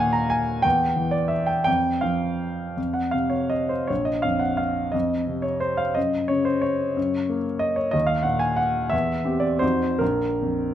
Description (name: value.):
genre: classical, piano waltz.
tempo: 146-194 BPM.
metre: 3/4.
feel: rubato.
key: Bb minor.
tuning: A4 = 439 Hz.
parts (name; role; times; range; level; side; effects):
clear grand piano; solo; 0.0-10.7 s; Bb1 to Bb5; -21 LUFS; equal; none.
room: light reverb.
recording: close, detailed microphones, faint mains hum.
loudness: -21 LUFS.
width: side -11 dB against mid.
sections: 0.0-10.7 A section.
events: none.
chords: 0.0 Ebmadd11; 0.6 N.C.; 2.8 F5; 3.9 Bb5; 4.9 F5; 6.0 Gb; 7.9 Ebmadd9; 8.9 C/E; 9.6 F5; 10.0 Bb5.